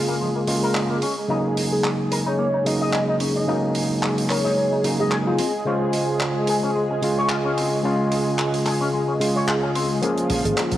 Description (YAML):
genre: nu-disco, nu disco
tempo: 110 BPM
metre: 4/4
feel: swing 55% on 16ths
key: unclear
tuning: A4 = 442 Hz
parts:
  - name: overdriven tine electric piano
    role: accompaniment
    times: 0.0-10.8 s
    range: Db3 to C5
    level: -23 LUFS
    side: equal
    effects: auto-pan, cassette tape
  - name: lush unison pad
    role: sustained chords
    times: 0.0-10.8 s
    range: F3 to Ab4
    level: -26 LUFS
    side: equal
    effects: chorus, cassette tape
  - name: electric guitar with an envelope filter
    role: riff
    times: 0.1-10.1 s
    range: F3 to Eb5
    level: -28 LUFS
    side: left 2 dB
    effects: wide subtle chorus, low-pass filter, cassette tape, tape echo
  - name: tight funk drum kit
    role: drums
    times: 0.5-10.8 s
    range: handclaps, hi-hat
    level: -28 LUFS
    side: right 1 dB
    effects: small room ambience, cassette tape
  - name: soft octave-layered synth lead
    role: melody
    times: 1.7-5.5, 10.4-10.6 s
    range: F4 to Eb5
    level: -26 LUFS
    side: equal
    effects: chorus, cassette tape, tape echo
  - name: riser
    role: sound effects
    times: 10.4-10.8 s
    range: none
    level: -34 LUFS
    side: left 1 dB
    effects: none
  - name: slap bass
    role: bass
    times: 10.3-10.8 s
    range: Ab1 to Bb1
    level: -24 LUFS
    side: equal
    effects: tube saturation
room: moderate lush hall reverb, RT60 2.8 s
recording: home recording on cassette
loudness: -19 LUFS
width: side -13 dB against mid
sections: 0.0-10.0 A section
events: filter sweep on analog synth pad 0.0-10.0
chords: 0.0 Bbm7; 1.0 Ebm7; 5.4 Dbmaj7; 10.0 Bbm7